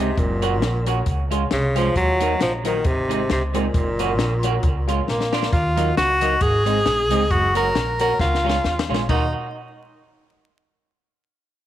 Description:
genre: ska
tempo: 135 BPM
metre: 4/4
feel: swing 56% on 8ths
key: Eb dorian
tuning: A4 = 440 Hz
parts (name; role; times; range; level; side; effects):
- breathy tenor saxophone; melody; 0.0-9.3 s; Bb2 to Bb4; -21 LUFS; equal; tape echo
- semi-hollow electric guitar; accompaniment; 0.0-9.2 s; Gb3 to Gb4; -26 LUFS; right 8 dB; tape echo
- warm upright piano; stabs; 0.0-9.3 s; Eb4 to Eb5; -31 LUFS; left 10 dB; none
- upright bass; bass; 0.0-9.3 s; Gb1 to Eb2; -24 LUFS; equal; none
- compact cocktail drum kit; drums; 0.2-9.2 s; china cymbal, hi-hat, kick drum, snare drum, toms; -24 LUFS; left 2 dB; none
room: moderate spring reverb, RT60 1.5 s, small room ambience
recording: 1960s-style stereo with parts hard left and right, vinyl crackle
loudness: -18 LUFS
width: side -12 dB against mid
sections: 0.0-5.5 A section; 5.5-9.1 B section; 9.1-10.9 C section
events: drum fill 5.1-5.5, 8.2-9.1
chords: 0.2 Gb; 1.1 Db; 2.0 Ebm; 2.9 Ab; 3.7 Gb; 4.6 Db; 5.1 Bb; 5.5 Ebm; 6.4 Ab; 7.3 Gb; 8.2 Db; 9.1 Ebm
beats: | 0.18 0.62 1.07 1.51 | 1.96 2.41 2.85 3.30 | 3.74 4.19 4.63 5.08 | 5.52 5.97 6.42 6.86 | 7.31 7.75 8.20 8.65 | 9.09

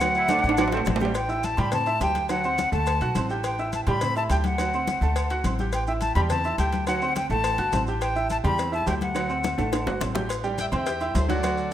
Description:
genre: latin, salsa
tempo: 210 BPM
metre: 4/4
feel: straight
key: unclear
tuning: A4 = 440 Hz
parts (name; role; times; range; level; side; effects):
- bright silver concert flute; melody; 0.0-10.0 s; F#5 to B5; -26 LUFS; left 2 dB; none
- clear baby grand piano; accompaniment; 0.0-11.7 s; F#3 to G6; -29 LUFS; right 4 dB; none
- upright bass; bass; 0.0-11.7 s; G1 to A2; -28 LUFS; equal; none
- agogo bells and timbales; percussion; 0.0-11.6 s; none; -33 LUFS; right 6 dB; none
- congas; percussion; 0.0-11.7 s; none; -34 LUFS; left 4 dB; none
- cowbell and bongos; percussion; 0.0-11.6 s; none; -34 LUFS; left 7 dB; none
- maracas; percussion; 0.0-11.7 s; none; -43 LUFS; right 3 dB; none
- brilliant trombone section; second line; 0.2-1.1 s; C4 to E4; -33 LUFS; right 2 dB; none
- clear trumpet section; melody; 10.6-11.7 s; A4 to G5; -30 LUFS; left 2 dB; none
room: moderate plate reverb, RT60 2.6 s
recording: rough home demo mix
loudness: -22 LUFS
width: side -11 dB against mid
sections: 0.0-1.2 A section; 1.2-10.3 B section; 10.3-11.7 C section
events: drum fill 0.3-1.2, 9.4-10.3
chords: 0.0 D7; 1.2 Am7; 2.3 D7; 3.4 Am7; 4.6 D7; 5.7 Am7; 6.9 D7; 8.0 Am7; 9.2 D7; 10.3 Am7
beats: | 0.01 0.30 0.58 0.87 | 1.15 1.44 1.73 2.01 | 2.30 2.58 2.87 3.16 | 3.44 3.73 4.01 4.30 | 4.59 4.87 5.16 5.44 | 5.73 6.01 6.30 6.59 | 6.87 7.16 7.44 7.73 | 8.01 8.30 8.59 8.87 | 9.16 9.44 9.73 10.01 | 10.30 10.58 10.87 11.15 | 11.44 11.72

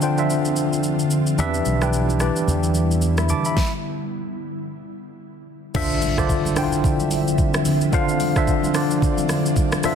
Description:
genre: amapiano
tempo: 110 BPM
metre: 4/4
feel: swing 58% on 16ths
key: D dorian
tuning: A4 = 440 Hz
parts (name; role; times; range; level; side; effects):
- tine electric piano; accompaniment; 0.0-9.9 s; D3 to D6; -21 LUFS; left 1 dB; medium stereo tremolo
- ethereal airy pad; sustained chords; 0.0-9.9 s; D3 to E5; -27 LUFS; right 1 dB; ensemble chorus, built-in reverb, sidechain pumping
- smooth R&B drum kit; drums; 0.0-9.9 s; crash cymbal, hi-hat, kick drum, rim click, shaker, snare drum; -24 LUFS; equal; none
- downlifter and impact; sound effects; 0.0-1.4, 5.7-7.9 s; none; -33 LUFS; equal; none
- fretless electric bass; bass; 1.4-3.3 s; B1 to E2; -21 LUFS; equal; wide subtle chorus
- congas; percussion; 1.4-9.9 s; none; -31 LUFS; right 3 dB; none
room: light reverb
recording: dense, heavily limited modern master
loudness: -18 LUFS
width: side -7 dB against mid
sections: 0.0-5.7 A section; 5.7-9.9 B section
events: stop 3.6-5.7; impact 5.7-7.9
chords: 0.0 Dm9; 1.4 Em7; 5.7 Dm9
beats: 0.29 0.84 | 1.39 1.93 2.48 3.02 | 3.57 4.11 4.66 5.20 | 5.75 6.29 6.84 7.38 | 7.93 8.47 9.02 9.57

